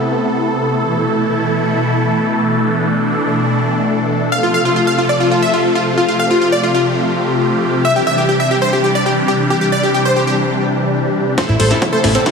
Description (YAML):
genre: uplifting trance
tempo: 136 BPM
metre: 4/4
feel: straight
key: A minor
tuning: A4 = 438 Hz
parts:
  - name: supersaw pad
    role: sustained chords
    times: 0.0-12.3 s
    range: B2 to A4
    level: -15 LUFS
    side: equal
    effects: phaser, sidechain pumping
  - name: supersaw stab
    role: melody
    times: 4.3-12.3 s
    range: C4 to F5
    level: -15 LUFS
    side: equal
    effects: sidechain pumping, low-pass filter, tape echo
  - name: analog pluck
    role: arpeggios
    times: 11.4-12.3 s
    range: E3 to A4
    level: -20 LUFS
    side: right 1 dB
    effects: chorus, cassette tape, sidechain pumping, tape echo
  - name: electronic kick drum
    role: drums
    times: 11.4-12.3 s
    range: none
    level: -19 LUFS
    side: equal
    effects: high-pass filter on kick, high-pass filter on room
  - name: techno drum kit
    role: drums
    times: 11.4-12.3 s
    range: hi-hat, snare drum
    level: -20 LUFS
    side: equal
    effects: high-pass filter on snare, high-pass filter on hats, high-pass filter on cymbals, high-pass filter on room
  - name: riser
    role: sound effects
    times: 11.9-12.3 s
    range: none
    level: -24 LUFS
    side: left 1 dB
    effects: none
  - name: fat analog bass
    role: bass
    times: 11.5-12.2 s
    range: A1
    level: -15 LUFS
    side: equal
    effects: sidechain pumping
room: wet lush hall reverb, RT60 1.7 s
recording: heavily compressed radio sound, studio ambience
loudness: -13 LUFS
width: side -5 dB against mid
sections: 0.0-11.4 A section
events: drum fill 11.4-12.3; riser 11.9-12.3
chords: 0.0 Amadd9; 0.8 Esus4; 4.3 F; 7.8 Cadd9; 11.4 Amadd9